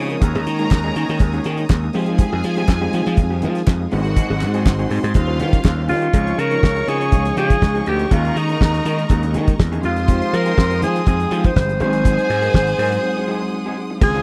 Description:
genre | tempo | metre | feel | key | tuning
disco | 122 BPM | 4/4 | straight | unclear | A4 = 439 Hz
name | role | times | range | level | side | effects
electric guitar through a small old amp | accompaniment | 0.0-14.2 s | Eb3 to Db5 | -30 LUFS | equal | spring reverb
mellow tine electric piano | accompaniment | 0.0-14.2 s | Eb3 to C5 | -28 LUFS | equal | none
clear studio string section | sustained chords | 0.0-14.2 s | Ab3 to Eb6 | -34 LUFS | equal | none
gritty slap bass | bass | 0.0-14.2 s | G1 to F3 | -23 LUFS | equal | overdrive
damped 70s drum kit | drums | 0.1-14.2 s | crash cymbal, hi-hat, kick drum, snare drum | -17 LUFS | equal | none
clear symphonic violin section | second line | 0.2-14.2 s | F4 to Db6 | -31 LUFS | equal | none
group handclap | percussion | 0.7-5.8 s | none | -36 LUFS | equal | none
warm alto saxophone | melody | 5.9-14.2 s | Eb4 to C5 | -23 LUFS | equal | none
room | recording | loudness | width
little or no reverb | dry, close 1970s-style studio recording | -18 LUFS | mono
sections
0.0-6.1 A section; 6.1-14.0 B section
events
break 13.0-14.0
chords
0.2 Eb7sus4; 1.9 Fm9; 3.9 Ab7; 5.1 Eb13; 6.1 Dbmaj9; 8.1 Eb7sus4; 9.8 Fm9; 11.8 Ab7

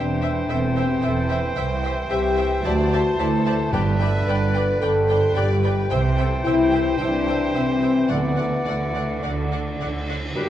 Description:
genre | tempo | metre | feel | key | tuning
classical, dramatic, fast romantic movement for symphony orchestra | 110 BPM | 4/4 | straight | unclear | A4 = 440 Hz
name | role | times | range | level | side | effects
warm symphonic violin section | melody | 0.0-10.1 s | F#4 to E5 | -34 LUFS | left 2 dB | none
bright oboe | second line | 0.0-10.1 s | B4 to D5 | -31 LUFS | right 1 dB | none
silver concert flute | second line | 0.0-10.1 s | F#5 to A5 | -31 LUFS | left 2 dB | none
warm symphonic violin section | second line | 0.0-10.2 s | D5 to A5 | -34 LUFS | left 2 dB | none
mellow bassoon | accompaniment | 0.0-10.1 s | D3 to E3 | -31 LUFS | right 2 dB | none
rich studio viola section | accompaniment | 0.0-10.4 s | D4 to E5 | -33 LUFS | right 1 dB | none
mellow French horn section | sustained chords | 0.0-10.1 s | A3 to B4 | -23 LUFS | left 3 dB | none
clear symphonic double bass section | bass | 0.0-10.4 s | E1 to G2 | -26 LUFS | right 3 dB | none
warm symphonic cello section | bass | 0.0-10.5 s | C2 to G4 | -26 LUFS | right 2 dB | none
timpani | percussion | 2.7-4.5, 8.1-8.9 s | G2 to D3 | -30 LUFS | left 1 dB | none
cymbal swell and tam-tam | percussion | 5.9-10.5 s | none | -34 LUFS | equal | none
room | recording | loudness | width
wet recital hall reverb, RT60 1.7 s | dark, warm production | -19 LUFS | side -11 dB against mid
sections
0.0-10.4 A section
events
none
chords
0.0 C/E; 1.6 C; 2.6 D9; 3.7 G; 5.9 C; 8.1 D

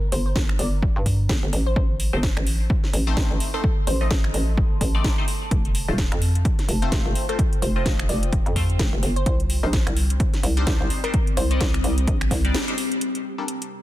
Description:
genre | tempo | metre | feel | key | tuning
bass house | 128 BPM | 4/4 | swing 58% on 16ths | G minor | A4 = 440 Hz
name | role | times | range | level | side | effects
deep dark ambient pad | texture | 0.1-13.8 s | C4 to D6 | -33 LUFS | left 2 dB | chorus, built-in reverb, sidechain pumping
glassy wavetable pluck | melody | 0.1-4.1, 7.3-11.6 s | A4 to D5 | -32 LUFS | left 1 dB | chorus, digital delay
hollow knocking FM bass | bass | 0.1-12.5 s | Eb1 to G2 | -23 LUFS | equal | overdrive, sidechain pumping
house drum kit | drums | 0.1-13.7 s | finger snaps, hi-hat, snare drum | -29 LUFS | equal | overdrive
electronic kick drum | drums | 0.4-12.4 s | none | -23 LUFS | equal | overdrive
band-passed chord stab | stabs | 2.1-13.4 s | G3 to Eb5 | -31 LUFS | left 3 dB | phaser, cassette tape, sidechain pumping, digital delay
room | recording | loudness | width
digital ambience | dense, heavily limited modern master | -19 LUFS | side -14 dB against mid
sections
0.0-13.0 A section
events
break 12.5-13.0; band accent 12.5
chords
0.0 Gmadd9; 1.8 Adim; 5.5 F; 9.3 Cmadd9; 13.0 Gmadd9

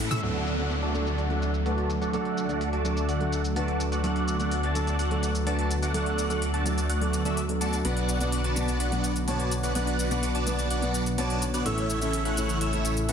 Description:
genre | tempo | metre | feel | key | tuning
EDM, festival progressive house | 126 BPM | 4/4 | straight | D major | A4 = 438 Hz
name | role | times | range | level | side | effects
dark grand piano | accompaniment | 0.0-13.1 s | A2 to C#5 | -31 LUFS | right 2 dB | dub echo
lush unison pad | sustained chords | 0.0-13.1 s | C#3 to F#4 | -36 LUFS | equal | chorus
wide detuned saw bass | bass | 0.0-13.1 s | A1 to A2 | -29 LUFS | equal | chorus
big-room dance drum kit | drums | 0.0-13.1 s | crash cymbal, hi-hat, shaker, toms | -36 LUFS | left 1 dB | low-pass filter on hats, low-pass filter on perc, low-pass filter on cymbals, low-pass filter on snare, low-pass filter on toms, low-pass filter on room
big supersaw lead | riff | 0.1-13.1 s | A3 to A5 | -30 LUFS | equal | phaser, low-pass filter, dub echo
downlifter | sound effects | 0.2-4.0 s | none | -38 LUFS | equal | none
room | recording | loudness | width
light reverb | dense, heavily limited modern master | -24 LUFS | side -7 dB against mid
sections
0.2-13.1 A section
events
drum fill 0.0; filter sweep on drum 0.2-13.1; filter sweep on supersaw synth 0.2-13.1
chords
0.2 D; 7.8 Bm; 11.7 A

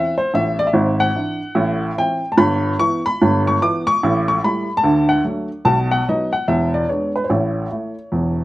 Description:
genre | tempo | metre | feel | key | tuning
jazz, stride piano | 146 BPM | 4/4 | swing 63% on 8ths | unclear | A4 = 445 Hz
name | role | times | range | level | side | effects
dark upright piano | solo | 0.0-8.4 s | E1 to D6 | -16 LUFS | equal | none
room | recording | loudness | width
little or no reverb | recorded outdoors, with no room sound | -16 LUFS | side -16 dB against mid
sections
0.0-8.4 A section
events
none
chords
0.0 Am; 0.7 E7/G#; 1.6 Am; 2.4 Em/G; 4.0 A5; 4.8 D; 5.7 B; 6.5 E7; 7.3 A

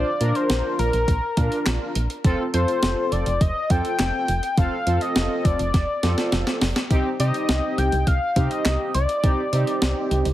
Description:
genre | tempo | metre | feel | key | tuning
synth-pop | 103 BPM | 4/4 | straight | unclear | A4 = 440 Hz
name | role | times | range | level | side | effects
octave-doubled lead | melody | 0.0-10.1 s | Bb4 to G5 | -25 LUFS | left 2 dB | chorus, tape echo
analog synth brass | accompaniment | 0.0-10.3 s | C4 to Bb4 | -27 LUFS | right 1 dB | chorus
solid FM bass | bass | 0.0-10.3 s | F1 to C3 | -23 LUFS | equal | none
clean 12-bit digital drum machine | drums | 0.2-10.3 s | handclaps, hi-hat, kick drum, snare drum | -23 LUFS | equal | overdrive
room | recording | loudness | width
light reverb, digital ambience | heavily compressed radio sound | -19 LUFS | side -14 dB against mid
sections
0.0-10.3 A section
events
drum fill 5.7-6.9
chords
0.0 Bb; 2.2 Fadd9; 6.9 Cmadd9

